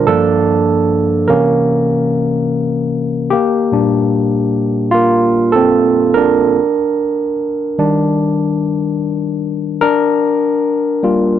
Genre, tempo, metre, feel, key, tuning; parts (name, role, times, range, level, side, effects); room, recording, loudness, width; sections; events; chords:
soul; 74 BPM; 4/4; straight; Bb major; A4 = 440 Hz
barky tine electric piano; solo; 0.0-11.4 s; G2 to Bb4; -12 LUFS; moving between left 6 dB and right 5 dB; overdrive, auto-pan
light reverb, digital ambience; -12 LUFS; side -10 dB against mid
0.0-3.3 A section; 3.3-11.4 B section
tine electric piano solo 0.0-3.3, 3.3-11.4
0.1 Gm9; 1.3 C7b9; 3.3 Bb6; 6.6 Ebmaj7; 9.8 Gm7